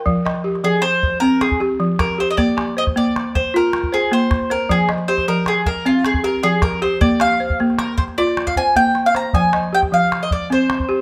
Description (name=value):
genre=west african traditional, West African string and xylophone music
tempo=104 BPM (dotted quarters)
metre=12/8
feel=straight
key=F dorian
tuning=A4 = 441 Hz
part: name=balafon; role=arpeggios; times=0.0-11.0 s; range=F3 to Ab5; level=-21 LUFS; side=equal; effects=tape echo
part: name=calabash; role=percussion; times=0.1-10.9 s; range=none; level=-25 LUFS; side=equal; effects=none
part: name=mandolin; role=melody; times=0.6-11.0 s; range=F4 to Bb5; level=-21 LUFS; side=equal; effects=none
room=light reverb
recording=close, detailed microphones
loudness=-18 LUFS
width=mono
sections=0.1-11.0 A section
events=mandolin solo 0.1-11.0; drum fill 8.6-9.3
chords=0.1 F5; 2.4 Bb; 4.7 F5; 7.0 Bb5; 9.3 Fm